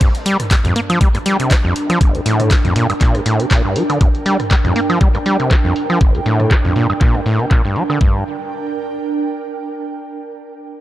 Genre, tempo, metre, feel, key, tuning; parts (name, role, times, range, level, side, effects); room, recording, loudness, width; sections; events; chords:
acid house; 120 BPM; 4/4; swing 56% on 16ths; G minor; A4 = 441 Hz
overdriven acid bass; riff; 0.0-8.2 s; G1 to Bb3; -16 LUFS; equal; tape echo
electronic kick drum; drums; 0.0-8.1 s; -13 LUFS; equal
punchy analog drum machine; drums; 0.0-8.0 s; handclaps, hi-hat, rim click, toms, woodblock; -22 LUFS; equal; low-pass filter on hats, low-pass filter on perc, low-pass filter on cymbals, low-pass filter on snare, low-pass filter on toms, low-pass filter on room
ethereal airy pad; texture; 0.0-10.0 s; D4 to A5; -23 LUFS; right 4 dB; ensemble chorus, built-in reverb, sidechain pumping
light reverb, digital ambience; dry, gritty hardware recording, transformer saturation; -13 LUFS; side -14 dB against mid
0.0-8.0 A section; 8.0-10.0 B section
filter sweep on drum 0.0-8.0; filter sweep on acid bass 0.0-8.0
0.0 Gm